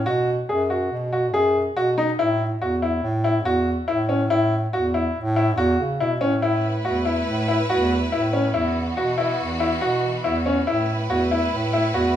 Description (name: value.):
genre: contemporary instrumental, chamber music in an uneven meter.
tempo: 142 BPM.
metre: 5/4.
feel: straight.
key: unclear.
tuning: A4 = 440 Hz.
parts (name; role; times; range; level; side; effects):
mellow bass clarinet; bass; 0.0-12.2 s; E2 to C#3; -24 LUFS; right 1 dB; none.
clear grand piano; arpeggios; 0.1-12.2 s; C#4 to G#4; -22 LUFS; left 1 dB; none.
clear studio string section; sustained chords; 6.4-12.2 s; E3 to B4; -28 LUFS; right 2 dB; none.
room: moderate recital hall reverb, RT60 1.5 s.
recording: minimal, uncompressed stereo recording.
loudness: -19 LUFS.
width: side -10 dB against mid.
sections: 0.0-6.4 A section; 6.4-12.2 B section.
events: none.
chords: 0.1 B5; 2.2 A5; 8.5 Esus2; 10.7 Asus2.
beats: | 0.07 0.50 0.92 1.34 1.77 | 2.19 2.61 3.04 3.46 3.88 | 4.31 4.73 5.16 5.58 6.00 | 6.43 6.85 7.28 7.70 8.12 | 8.55 8.97 9.40 9.82 10.25 | 10.67 11.10 11.52 11.95.